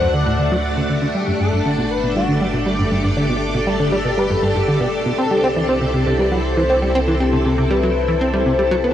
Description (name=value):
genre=ambient, sequencer-driven space music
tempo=119 BPM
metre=4/4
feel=straight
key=G major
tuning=A4 = 441 Hz
part: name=expressive synth lead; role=melody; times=0.0-8.9 s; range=F#4 to D5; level=-23 LUFS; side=left 5 dB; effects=analog chorus, cassette tape, shimmer reverb, ping-pong delay
part: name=string machine, full ensemble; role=sustained chords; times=0.0-8.9 s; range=A3 to F#5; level=-21 LUFS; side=equal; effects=ensemble chorus, cassette tape, shimmer reverb
part: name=plucky analog bass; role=riff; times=0.0-8.9 s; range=D2 to C4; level=-19 LUFS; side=equal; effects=cassette tape, shimmer reverb, ping-pong delay
part: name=warm sub bass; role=bass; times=0.0-8.9 s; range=G1 to D2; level=-25 LUFS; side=right 1 dB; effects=none
room=wet booth ambience, RT60 0.2 s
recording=home recording on cassette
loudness=-16 LUFS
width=side -11 dB against mid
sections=0.0-8.9 A section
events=filter sweep on analog synth bass 0.0-8.9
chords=0.0 D; 1.2 Gadd9; 5.2 Cadd9